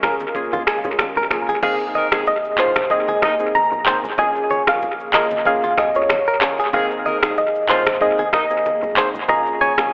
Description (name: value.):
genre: afrobeats.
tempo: 94 BPM.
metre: 4/4.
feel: swing 55% on 16ths.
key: unclear.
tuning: A4 = 441 Hz.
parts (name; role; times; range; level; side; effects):
warm analog keys; accompaniment; 0.0-9.9 s; Bb3 to Ab4; -24 LUFS; equal; chorus, analog delay.
hollow soft pad; sustained chords; 0.0-9.9 s; C3 to Bb4; -32 LUFS; equal; none.
direct-recorded clean electric guitar; riff; 0.0-9.7 s; F4 to F5; -23 LUFS; equal; analog delay.
deep log drum bass; bass; 0.0-9.9 s; Gb1 to F2; -33 LUFS; equal; none.
afro-pop drum kit; drums; 0.0-9.9 s; crash cymbal, finger snaps, handclaps, kick drum, rim click, shaker, toms; -21 LUFS; equal; analog delay.
congas; percussion; 0.0-9.8 s; none; -37 LUFS; equal; analog delay.
warm horn section; second line; 1.6-8.4 s; C3 to Bb4; -25 LUFS; equal; none.
soft round pluck; melody; 2.3-9.9 s; C5 to Bb5; -18 LUFS; equal; chorus, analog delay.
room: moderate echo chamber reverb, RT60 1.8 s, digital ambience.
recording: echo-heavy mix, telephone sound.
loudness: -15 LUFS.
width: side -39 dB against mid.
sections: 0.0-1.6 A section; 1.6-9.9 B section.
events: none.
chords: 0.0 Bbm7; 1.6 Abadd9; 4.2 Bbm7; 6.7 Abadd9; 9.3 Bbm7.